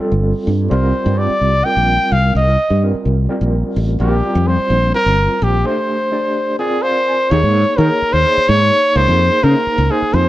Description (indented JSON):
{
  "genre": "electric jazz fusion",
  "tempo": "254 BPM (eighths)",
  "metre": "7/8",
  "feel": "straight",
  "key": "unclear",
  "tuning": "A4 = 442 Hz",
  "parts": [
    { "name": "overdriven tine electric piano", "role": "accompaniment", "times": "0.0-10.3 s", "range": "G3 to Ab5", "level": "-21 LUFS", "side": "right 1 dB", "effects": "medium tremolo, lush chorus, plate reverb" },
    { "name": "fretless electric bass", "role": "bass", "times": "0.1-10.3 s", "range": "G1 to Eb3", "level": "-15 LUFS", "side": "equal", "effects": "lush chorus" },
    { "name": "mellow trumpet", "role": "melody", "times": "0.7-10.3 s", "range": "G4 to G5", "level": "-15 LUFS", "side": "equal", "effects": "slapback echo, plate reverb" }
  ],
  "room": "light reverb",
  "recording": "none",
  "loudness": "-12 LUFS",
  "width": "side -15 dB against mid",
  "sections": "0.0-7.3 A section; 7.3-10.3 B section",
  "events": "break 5.7-7.3; tine electric piano fill 6.6-7.3",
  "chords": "0.0 Bbsus2 (rootless); 0.7 C7(no3); 4.0 Bbsus2; 5.7 Csus2; 6.6 Bb; 7.3 Eb5; 9.0 Db69",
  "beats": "0.22 0.46 | 0.69 0.93 1.17 1.40 1.64 1.88 2.11 | 2.35 2.58 2.82 3.06 3.29 3.53 3.76 | 4.00 4.24 4.47 4.71 4.95 5.18 5.42 | 5.65 5.89 6.13 6.36 6.60 6.83 7.07 | 7.31 7.54 7.78 8.01 8.25 8.48 8.72 | 8.96 9.19 9.43 9.66 9.90 10.13"
}